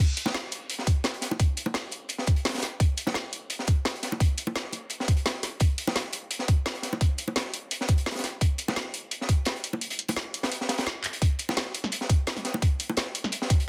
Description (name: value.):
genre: drum and bass.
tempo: 171 BPM.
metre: 4/4.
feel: straight.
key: none.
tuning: none.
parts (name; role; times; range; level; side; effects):
crunchy breakbeat drum kit; drums; 0.2-13.7 s; hi-hat, snare drum; -35 LUFS; equal; high-pass filter on hats, high-pass filter on snare, high-pass filter on room.
drum and bass drum kit; drums; 0.2-13.6 s; handclaps, hi-hat, snare drum; -33 LUFS; equal; none.
bongos; percussion; 0.3-13.0 s; none; -33 LUFS; equal; none.
electronic kick drum; drums; 0.9-13.6 s; none; -25 LUFS; equal; none.
room: studio reverb.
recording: dense, heavily limited modern master.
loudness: -28 LUFS.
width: mono.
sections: 0.0-13.7 A section.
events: kick drops out 9.8-11.2; drum fill 11.0.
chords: none.